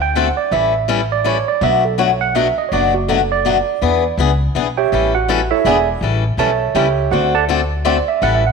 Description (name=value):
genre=acoustic string swing (jazz manouche)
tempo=164 BPM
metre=3/4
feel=swing 60% on 8ths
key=A mixolydian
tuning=A4 = 440 Hz
part: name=tine electric piano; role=second line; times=0.0-8.5 s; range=E4 to A5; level=-17 LUFS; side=right 8 dB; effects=medium stereo tremolo
part: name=upright bass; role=bass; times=0.0-8.5 s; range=E1 to E2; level=-20 LUFS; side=left 1 dB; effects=none
part: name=picked swing-style acoustic guitar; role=accompaniment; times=0.2-8.4 s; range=B2 to A4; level=-18 LUFS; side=left 10 dB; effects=none
room=wet echo chamber reverb, RT60 1.8 s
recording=1960s-style stereo with parts hard left and right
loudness=-14 LUFS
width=side -5 dB against mid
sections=0.0-6.0 A section; 6.0-8.5 A section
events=tine electric piano solo 0.0-8.5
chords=0.0 D7; 0.5 A7; 1.6 Bm7; 3.8 E7; 4.9 A7; 5.7 E7; 6.0 A7; 7.1 D7